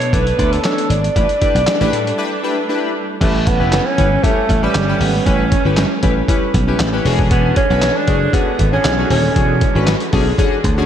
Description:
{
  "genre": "early-eighties boogie funk",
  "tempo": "117 BPM",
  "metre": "4/4",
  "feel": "straight",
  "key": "unclear",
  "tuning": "A4 = 439 Hz",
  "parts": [
    { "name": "breathy alto saxophone", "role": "melody", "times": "0.0-10.1 s", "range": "G3 to D5", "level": "-19 LUFS", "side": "right 2 dB", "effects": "none" },
    { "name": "clear studio string section", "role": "sustained chords", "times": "0.0-10.9 s", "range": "D3 to D4", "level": "-24 LUFS", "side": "right 2 dB", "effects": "none" },
    { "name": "slap bass", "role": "bass", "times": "0.0-10.8 s", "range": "D#1 to B2", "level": "-17 LUFS", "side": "equal", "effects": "none" },
    { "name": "dusty soul sampler-style drum kit", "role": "drums", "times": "0.0-10.8 s", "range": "crash cymbal, handclaps, hi-hat, kick drum, snare drum", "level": "-18 LUFS", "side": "equal", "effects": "none" },
    { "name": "chorused polysynth", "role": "accompaniment", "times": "0.1-10.9 s", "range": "C#4 to D5", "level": "-20 LUFS", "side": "left 3 dB", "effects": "none" }
  ],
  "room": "moderate lush hall reverb, RT60 1.6 s",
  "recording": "dreamy mix soaked in reverb",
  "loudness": "-13 LUFS",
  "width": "side -9 dB against mid",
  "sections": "0.0-3.2 A section; 3.2-10.9 B section",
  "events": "break 2.2-3.2",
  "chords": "0.0 Bm11; 1.2 A7sus4; 3.2 A9; 7.1 E13"
}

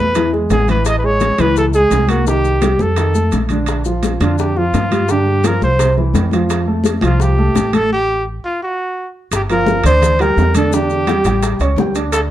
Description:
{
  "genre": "Afro-Cuban jazz",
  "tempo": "170 BPM",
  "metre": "4/4",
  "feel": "straight",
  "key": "F major",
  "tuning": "A4 = 440 Hz",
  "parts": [
    { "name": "clear trumpet", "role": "melody", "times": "0.0-12.2 s", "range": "F4 to Eb5", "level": "-17 LUFS", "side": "equal", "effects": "none" },
    { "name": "warm concert grand piano", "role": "accompaniment", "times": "0.0-12.2 s", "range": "C3 to D6", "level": "-18 LUFS", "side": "right 1 dB", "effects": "none" },
    { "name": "upright bass", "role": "bass", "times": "0.0-12.3 s", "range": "G1 to G2", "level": "-17 LUFS", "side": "equal", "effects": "none" },
    { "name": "maracas", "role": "percussion", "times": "0.1-12.3 s", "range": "none", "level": "-32 LUFS", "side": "left 10 dB", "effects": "none" },
    { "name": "bongos", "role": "percussion", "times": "0.2-12.3 s", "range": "none", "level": "-24 LUFS", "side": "left 5 dB", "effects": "none" },
    { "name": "congas", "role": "percussion", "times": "0.2-12.3 s", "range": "none", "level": "-22 LUFS", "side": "left 2 dB", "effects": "none" },
    { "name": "timbales", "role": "percussion", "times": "0.2-12.3 s", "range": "none", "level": "-27 LUFS", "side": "right 7 dB", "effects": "none" }
  ],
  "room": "moderate club reverb, RT60 0.9 s",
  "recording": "dark, warm production",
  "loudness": "-13 LUFS",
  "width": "side -12 dB against mid",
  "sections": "0.0-9.3 A section; 9.3-12.3 B section",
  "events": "stop 7.9-9.3",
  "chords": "0.2 E; 0.9 Amaj7; 2.3 Cm; 3.0 F7; 3.7 Bb; 5.1 G5; 5.8 C; 6.5 Fadd9; 7.9 Fadd9/A; 8.6 N.C.; 9.3 Gm7; 10.7 Em7; 11.4 A7"
}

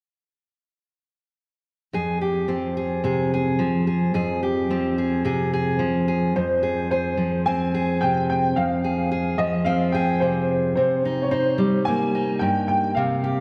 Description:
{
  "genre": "folk",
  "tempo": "109 BPM",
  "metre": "4/4",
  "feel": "straight",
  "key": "F minor",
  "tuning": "A4 = 440 Hz",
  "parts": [
    { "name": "fingerpicked steel-string acoustic guitar", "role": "accompaniment", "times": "1.9-13.4 s", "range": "F2 to Ab4", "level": "-24 LUFS", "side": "equal", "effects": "none" },
    { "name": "clear upright piano", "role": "melody", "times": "6.4-13.4 s", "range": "C5 to Ab5", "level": "-26 LUFS", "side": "equal", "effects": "analog chorus, analog delay" }
  ],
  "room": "wet church reverb, RT60 3.3 s",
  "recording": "dreamy mix soaked in reverb",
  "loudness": "-22 LUFS",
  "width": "mono",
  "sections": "1.9-6.4 A section; 6.4-13.4 B section",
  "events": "none",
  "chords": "1.9 Fmadd9; 6.4 Fm; 10.8 Cm7"
}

